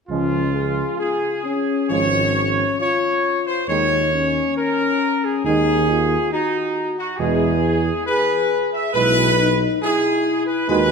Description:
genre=classical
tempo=68 BPM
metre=4/4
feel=straight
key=Db major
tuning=A4 = 440 Hz
part: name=bright trumpet section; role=melody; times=0.1-10.9 s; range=Eb4 to E5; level=-20 LUFS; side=equal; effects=none
part: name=mellow French horn section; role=sustained chords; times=0.1-10.9 s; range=Db4 to Ab4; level=-22 LUFS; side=left 5 dB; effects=none
part: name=mellow trombone section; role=sustained chords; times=0.1-10.9 s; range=B2 to Ab3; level=-26 LUFS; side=right 5 dB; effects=none
part: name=warm tuba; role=bass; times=0.1-10.9 s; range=Ab1 to E2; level=-24 LUFS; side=right 4 dB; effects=none
room=wet scoring stage reverb, RT60 1.9 s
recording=none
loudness=-17 LUFS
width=side -5 dB against mid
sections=0.1-10.9 A section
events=none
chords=0.1 Db; 3.7 Absus4/Eb; 7.2 E

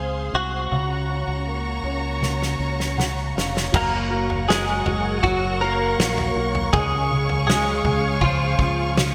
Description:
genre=pop ballad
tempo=80 BPM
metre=4/4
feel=straight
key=unclear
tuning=A4 = 440 Hz
part: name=direct-recorded clean electric guitar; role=melody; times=0.0-9.1 s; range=F3 to Bb4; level=-26 LUFS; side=equal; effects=ensemble chorus
part: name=warm concert grand piano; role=accompaniment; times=0.0-9.1 s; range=Db3 to Gb5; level=-30 LUFS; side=equal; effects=ensemble chorus
part: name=warm studio string section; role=sustained chords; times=0.0-9.1 s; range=Gb4 to Db6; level=-31 LUFS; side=equal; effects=none
part: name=fingered electric bass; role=bass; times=0.0-9.1 s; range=F1 to Db2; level=-30 LUFS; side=equal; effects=none
part: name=natural country drum kit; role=drums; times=2.2-9.1 s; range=crash cymbal, kick drum, snare drum, toms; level=-27 LUFS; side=equal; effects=gated reverb
room=moderate lush hall reverb, RT60 2.2 s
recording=bright 1980s-style digital production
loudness=-22 LUFS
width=mono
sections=0.0-3.7 A section; 3.7-9.1 B section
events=drum fill 2.2-3.7; grand piano fill 2.6-3.7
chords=0.0 Fm/Db; 0.7 Gb/Db; 3.7 Gb; 6.7 Db

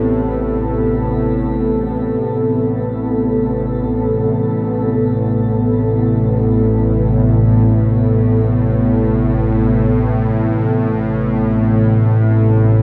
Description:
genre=dark ambient drone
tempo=free time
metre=none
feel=none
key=unclear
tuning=A4 = 440 Hz
part: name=sweeping resonant pad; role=sustained chords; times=0.0-12.8 s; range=C3 to A4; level=-19 LUFS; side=equal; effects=chorus, shimmer reverb
part: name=bowed-like drone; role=drone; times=0.0-12.8 s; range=A1 to A2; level=-18 LUFS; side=equal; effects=built-in reverb
part: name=bronze singing bowl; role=texture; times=0.0-12.8 s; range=E4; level=-37 LUFS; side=equal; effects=none
room=wet huge ambient reverb, RT60 9.3 s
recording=none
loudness=-15 LUFS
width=mono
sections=0.0-5.0 A section; 5.0-12.8 B section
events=none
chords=0.0 Amadd9

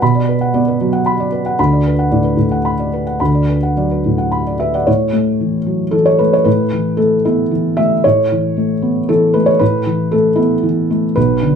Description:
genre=neoclassical minimalist piano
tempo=114 BPM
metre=3/4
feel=rubato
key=A major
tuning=A4 = 440 Hz
part: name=felt-muted upright piano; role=solo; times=0.0-11.6 s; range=B1 to B5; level=-12 LUFS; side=equal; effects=none
room=moderate studio ambience, RT60 0.5 s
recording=band playing live in one room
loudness=-12 LUFS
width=side -7 dB against mid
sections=0.0-4.9 A section; 4.9-11.6 B section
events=none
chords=0.0 Bm; 1.6 D6; 4.9 A

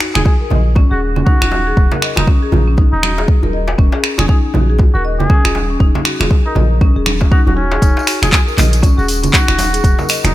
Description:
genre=afro house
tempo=119 BPM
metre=4/4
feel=swing 60% on 16ths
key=Eb minor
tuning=A4 = 443 Hz
part: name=marimba with medium mallets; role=arpeggios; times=0.0-10.2 s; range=Db4 to Eb5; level=-21 LUFS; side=left 4 dB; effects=sidechain pumping, low-pass filter, dub echo
part: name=afro-pop drum kit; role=drums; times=0.0-10.3 s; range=finger snaps, handclaps, hi-hat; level=-17 LUFS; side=equal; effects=overdrive, small room ambience
part: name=trumpet with cup mute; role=melody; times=0.1-10.3 s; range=Db4 to Ab4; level=-22 LUFS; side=right 1 dB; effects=dub echo
part: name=warm 808-style bass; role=bass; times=0.2-10.3 s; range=Eb1 to Bb1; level=-16 LUFS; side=equal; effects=sidechain pumping
part: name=congas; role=percussion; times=0.2-10.3 s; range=none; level=-22 LUFS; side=right 4 dB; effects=none
part: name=djembe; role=percussion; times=0.2-10.3 s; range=none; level=-24 LUFS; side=left 1 dB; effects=none
part: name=electronic kick drum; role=drums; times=0.3-10.0 s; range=none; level=-11 LUFS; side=equal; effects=overdrive, small room ambience
part: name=tambourine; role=percussion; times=7.8-10.3 s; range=none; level=-26 LUFS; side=equal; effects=none
room=little or no reverb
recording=none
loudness=-11 LUFS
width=side -15 dB against mid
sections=0.0-10.3 A section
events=none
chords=0.0 Eb7(no3)

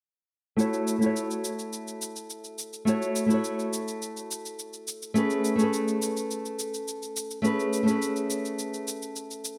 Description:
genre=sunset chillout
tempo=105 BPM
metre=4/4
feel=straight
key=F# minor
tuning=A4 = 440 Hz
part: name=nylon-string guitar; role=accompaniment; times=0.6-9.6 s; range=A3 to C#5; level=-29 LUFS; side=equal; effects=low-pass filter, digital delay
part: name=shaker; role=drums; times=0.6-9.6 s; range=none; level=-38 LUFS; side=equal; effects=none
room=moderate lush hall reverb, RT60 2.1 s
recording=none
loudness=-29 LUFS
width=mono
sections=0.6-9.6 A section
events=filter sweep on nylon-string guitar 0.6-9.6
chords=0.6 F#m7; 5.2 Amaj9

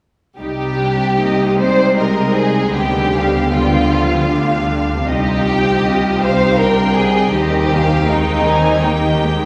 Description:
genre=classical, slow romantic movement for string orchestra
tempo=78 BPM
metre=3/4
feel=rubato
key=C minor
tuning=A4 = 439 Hz
part: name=rich studio violin section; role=second line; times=0.4-9.2 s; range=Eb4 to C5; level=-19 LUFS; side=equal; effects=none
part: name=rich studio viola section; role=accompaniment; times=0.4-9.5 s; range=F3 to G4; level=-23 LUFS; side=equal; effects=none
part: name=rich studio cello section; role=bass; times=0.4-9.5 s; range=C3 to Eb3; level=-22 LUFS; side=equal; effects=none
part: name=rich studio double bass section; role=bass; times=0.4-9.5 s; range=C2 to Eb2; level=-22 LUFS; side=equal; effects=none
part: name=rich studio violin section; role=melody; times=1.2-9.5 s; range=D5 to Ab5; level=-26 LUFS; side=equal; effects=none
room=wet cathedral reverb, RT60 6.6 s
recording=recorded in a church or concert hall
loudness=-15 LUFS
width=mono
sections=0.4-9.5 A section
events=none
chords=0.4 Cm; 2.7 G7/D; 5.1 Cm; 7.4 Cm/Eb

